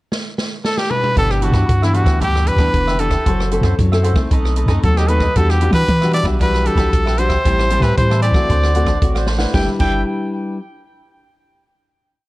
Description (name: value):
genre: samba and choro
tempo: 115 BPM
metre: 4/4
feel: straight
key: G major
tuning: A4 = 440 Hz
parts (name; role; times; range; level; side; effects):
- open jazz drum kit; drums; 0.1-9.9 s; crash cymbal, hi-hat, kick drum, rim click, snare drum, toms; -20 LUFS; equal; vintage 12-bit sampler grit
- clear trumpet; melody; 0.7-10.0 s; E4 to G5; -20 LUFS; equal; tape echo
- cavaquinho; accompaniment; 1.2-10.0 s; D4 to A5; -26 LUFS; right 3 dB; none
- nylon-string guitar; accompaniment; 1.2-10.6 s; G2 to B4; -22 LUFS; left 2 dB; none
- punchy sub bass; bass; 1.2-10.0 s; F1 to E3; -17 LUFS; equal; none
room: studio reverb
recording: cassette tape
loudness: -14 LUFS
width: side -19 dB against mid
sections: 0.0-1.2 pickup bar; 1.2-9.5 A section; 9.5-11.6 final chord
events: drum fill 0.1-1.2, 9.3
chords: 0.0 N.C.; 1.2 G6; 3.3 F#m7b5; 4.3 B7b9; 5.4 Em9; 7.5 Am7; 8.5 D7; 9.5 G6